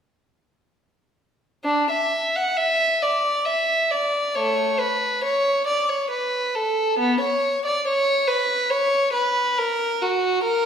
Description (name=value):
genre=classical, baroque-style suite movement for unaccompanied violin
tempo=68 BPM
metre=3/4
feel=rubato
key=D major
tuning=A4 = 440 Hz
part: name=rich violin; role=solo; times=1.6-10.7 s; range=A3 to F#5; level=-19 LUFS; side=equal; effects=none
room=wet recital hall reverb, RT60 1.4 s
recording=recorded in a church or concert hall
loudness=-19 LUFS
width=side -7 dB against mid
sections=1.7-10.7 A section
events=none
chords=none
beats=| 1.66 2.58 3.47 | 4.36 5.24 6.13 | 7.00 7.86 8.73 | 9.59 10.46